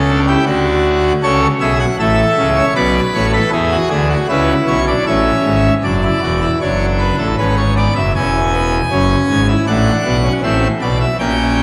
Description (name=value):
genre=classical, baroque-style 3-part fugue for pipe organ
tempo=78 BPM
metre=3/4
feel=straight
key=D major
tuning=A4 = 440 Hz
part: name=pipe organ, full organ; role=solo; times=0.0-11.6 s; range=E1 to G#5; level=-14 LUFS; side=equal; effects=none
room=wet church reverb, RT60 2.8 s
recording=none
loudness=-15 LUFS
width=mono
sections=0.0-5.8 A section; 5.8-11.6 B section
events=none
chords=0.5 D; 1.2 A; 2.8 Bm7; 3.5 E; 5.1 A; 5.8 D; 7.4 G#dim; 8.1 C#m/E; 9.7 F#m/A; 10.4 Am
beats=0.47 | 1.23 2.00 2.76 | 3.53 4.30 5.07 | 5.84 6.61 7.38 | 8.15 8.91 9.68 | 10.44 11.20